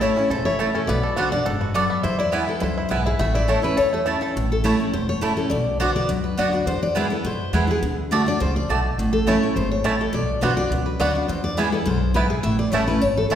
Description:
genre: bluegrass.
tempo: 208 BPM.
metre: 4/4.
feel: straight.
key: A major.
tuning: A4 = 440 Hz.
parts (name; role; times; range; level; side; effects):
bluegrass banjo; melody; 0.0-4.5, 9.3-13.4 s; A3 to A4; -28 LUFS; right 2 dB; none.
picked steel-string acoustic guitar; melody; 0.0-13.3 s; G#4 to E5; -24 LUFS; left 2 dB; none.
picked steel-string acoustic guitar; accompaniment; 0.0-13.4 s; E2 to F#4; -24 LUFS; left 1 dB; none.
mandolin; stabs; 0.0-13.4 s; A3 to A5; -27 LUFS; right 4 dB; none.
upright bass; bass; 0.0-13.4 s; E1 to F#2; -26 LUFS; equal; none.
room: wet recital hall reverb, RT60 1.6 s.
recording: recorded in a church or concert hall.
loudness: -19 LUFS.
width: side -9 dB against mid.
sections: 0.0-4.4 A section; 4.4-13.4 A section.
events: none.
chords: 0.0 A; 0.9 Bm; 2.0 E; 3.2 A; 5.5 Bm; 6.7 E; 7.8 D; 9.0 A; 10.1 Bm; 11.3 E; 12.4 A.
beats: 0.02 0.30 0.59 | 0.88 1.17 1.46 1.75 | 2.04 2.33 2.62 2.91 | 3.20 3.49 3.78 4.07 | 4.36 4.64 4.93 5.22 | 5.51 5.80 6.09 6.38 | 6.67 6.96 7.25 7.54 | 7.83 8.12 8.40 8.69 | 8.98 9.27 9.56 9.85 | 10.14 10.43 10.71 11.00 | 11.29 11.58 11.87 12.16 | 12.44 12.73 13.02 13.31.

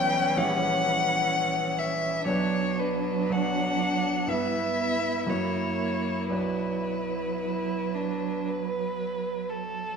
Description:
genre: classical, slow romantic movement for piano quartet.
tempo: 55-64 BPM.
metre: 4/4.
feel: rubato.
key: B minor.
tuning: A4 = 439 Hz.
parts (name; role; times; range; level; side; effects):
warm violin; melody; 0.0-9.5 s; B4 to G5; -28 LUFS; left 3 dB; none.
warm cello; second line; 0.0-10.0 s; E3 to B3; -32 LUFS; right 8 dB; none.
warm violin; second line; 0.0-10.0 s; C#4 to B4; -32 LUFS; equal; none.
bright grand piano; accompaniment; 0.0-10.0 s; A#1 to C#5; -32 LUFS; right 1 dB; none.
room: wet recital hall reverb, RT60 1.5 s.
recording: recorded in a church or concert hall.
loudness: -25 LUFS.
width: side -6 dB against mid.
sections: 0.0-10.0 A section.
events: none.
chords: 0.4 A#dim7; 2.3 Bm; 4.3 Em/G; 5.3 F#7; 6.3 Bm.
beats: 0.38 1.32 | 2.27 3.31 4.29 5.29 | 6.33 7.41 8.46 9.49.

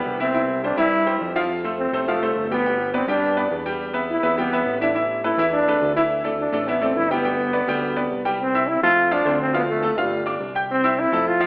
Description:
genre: latin, salsa.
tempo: 209 BPM.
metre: 4/4.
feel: straight.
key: C major.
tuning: A4 = 441 Hz.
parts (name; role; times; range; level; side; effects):
clear trombone; melody; 0.0-11.5 s; G3 to F4; -21 LUFS; equal; none.
bright baby grand piano; accompaniment; 0.0-11.5 s; E3 to G6; -22 LUFS; equal; none.
fat analog bass; bass; 0.0-11.5 s; G1 to G2; -30 LUFS; equal; none.
room: wet large studio reverb, RT60 1.5 s.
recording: heard from further back in the room, AM radio sound.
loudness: -18 LUFS.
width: side -28 dB against mid.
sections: 0.0-8.4 A section; 8.4-11.5 B section.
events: none.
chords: 0.3 C; 1.5 Fadd9; 2.7 G; 3.8 Em; 5.0 Asus2; 6.1 Dsus2; 7.2 G; 8.4 C; 9.0 F; 9.5 Dm; 10.1 G5; 10.7 C.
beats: 0.06 | 0.35 0.64 0.93 1.21 | 1.50 1.79 2.08 2.37 | 2.65 2.94 3.23 3.52 | 3.80 4.09 4.38 4.66 | 4.95 5.24 5.53 5.81 | 6.10 6.39 6.67 6.96 | 7.25 7.53 7.82 8.11 | 8.40 8.68 8.97 9.26 | 9.54 9.83 10.12 10.40 | 10.69 10.98 11.27.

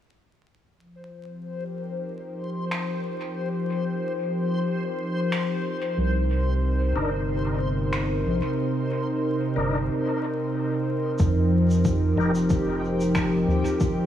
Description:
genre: ambient dub.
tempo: 92 BPM.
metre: 4/4.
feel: swing 54% on 16ths.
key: unclear.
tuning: A4 = 439 Hz.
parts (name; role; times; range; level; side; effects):
warm analog pad; sustained chords; 0.8-14.1 s; C3 to Bb4; -26 LUFS; equal; chorus.
backwards swelling texture; texture; 1.0-14.1 s; G4 to C5; -33 LUFS; left 2 dB; built-in reverb.
finger snaps and shaker; drums; 2.7-13.9 s; none; -35 LUFS; right 1 dB; dub echo.
round analog bass; bass; 6.0-13.6 s; F1 to F2; -24 LUFS; right 1 dB; none.
tonewheel organ; stabs; 7.0-12.3 s; D4 to Bb4; -33 LUFS; left 2 dB; chorus vibrato, fast rotary speaker, dub echo.
electronic kick drum; drums; 11.2-13.9 s; none; -25 LUFS; left 1 dB; overdrive.
room: moderate echo chamber reverb, RT60 2.7 s.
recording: vinyl crackle, studio ambience.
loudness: -23 LUFS.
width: side -10 dB against mid.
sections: 0.8-11.2 A section; 11.2-14.1 B section.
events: fade-in on analog synth pad 0.8-11.2.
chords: 0.8 F9sus4; 6.0 Cm7; 11.2 F9sus4.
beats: | 0.76 1.42 2.07 2.72 | 3.37 4.02 4.67 5.33 | 5.98 6.63 7.28 7.94 | 8.59 9.24 9.89 10.54 | 11.20 11.85 12.50 13.15 | 13.81.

